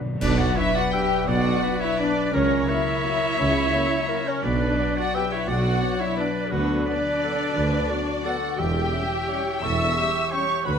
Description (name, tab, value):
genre	classical, orchestral ballroom waltz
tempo	172 BPM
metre	3/4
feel	uneven beats, rubato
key	B minor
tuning	A4 = 440 Hz
part	mellow French horn section	sustained chords	0.0-10.4 s	F#3 to D4	-36 LUFS	left 4 dB	none
part	concert harp	arpeggios	0.0-10.8 s	B2 to C#6	-31 LUFS	left 10 dB	none
part	muted symphonic cello section	bass	0.0-10.8 s	D2 to D3	-30 LUFS	right 3 dB	none
part	muted symphonic violin section	melody	0.2-10.8 s	B4 to E6	-28 LUFS	left 3 dB	none
part	clear oboe	second line	0.2-10.8 s	F#4 to C#6	-31 LUFS	right 2 dB	none
part	mellow hollow silver concert flute	second line	0.2-10.8 s	B4 to E6	-32 LUFS	equal	none
part	muted symphonic violin section	second line	0.2-10.8 s	B3 to E5	-32 LUFS	left 2 dB	none
part	muted symphonic viola section	accompaniment	0.2-10.8 s	B3 to E5	-29 LUFS	right 3 dB	none
part	mellow tuba	bass	0.2-10.8 s	E1 to D2	-31 LUFS	right 4 dB	none
part	muted chamber double bass section	bass	0.2-10.8 s	E1 to D2	-31 LUFS	right 3 dB	none
part	clash cymbals and concert bass drum	percussion	0.2-0.9 s	none	-32 LUFS	right 1 dB	none
part	clear clarinet	second line	0.6-10.8 s	F#4 to E5	-32 LUFS	equal	none
room	light reverb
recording	close, detailed microphones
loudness	-21 LUFS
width	side -7 dB against mid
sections	0.2-10.8 A section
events	band accent 0.2-0.6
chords	0.2 Bm; 2.3 F#7/C#; 4.4 Bm; 6.5 Bm/D; 8.6 C#dim/E